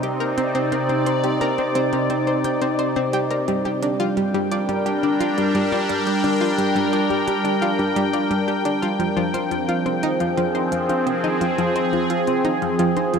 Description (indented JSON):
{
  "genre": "ambient, sequencer-driven space music",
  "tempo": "87 BPM",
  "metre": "4/4",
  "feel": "straight",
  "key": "G phrygian",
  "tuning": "A4 = 440 Hz",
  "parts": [
    { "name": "sweeping resonant pad", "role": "sustained chords", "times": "0.0-13.2 s", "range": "C3 to G5", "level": "-20 LUFS", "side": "equal", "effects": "chorus, shimmer reverb" },
    { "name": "analog pluck", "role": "riff", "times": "0.0-13.2 s", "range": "F3 to G5", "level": "-24 LUFS", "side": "equal", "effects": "chorus, analog delay, shimmer reverb" },
    { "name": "electronic hi-hat and percussion blips", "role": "percussion", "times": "0.0-13.2 s", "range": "none", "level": "-37 LUFS", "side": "equal", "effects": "analog delay" }
  ],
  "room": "wet plate reverb, RT60 2.8 s",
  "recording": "dreamy mix soaked in reverb",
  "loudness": "-18 LUFS",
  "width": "side -6 dB against mid",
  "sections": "0.0-13.2 A section",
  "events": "none",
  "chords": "0.0 Cmadd9; 3.5 Gm; 9.0 Fmadd9",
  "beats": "0.03 | 0.72 1.41 2.10 2.79 | 3.48 4.17 4.86 5.55 | 6.24 6.93 7.62 8.31 | 9.00 9.69 10.38 11.07 | 11.76 12.45 13.13"
}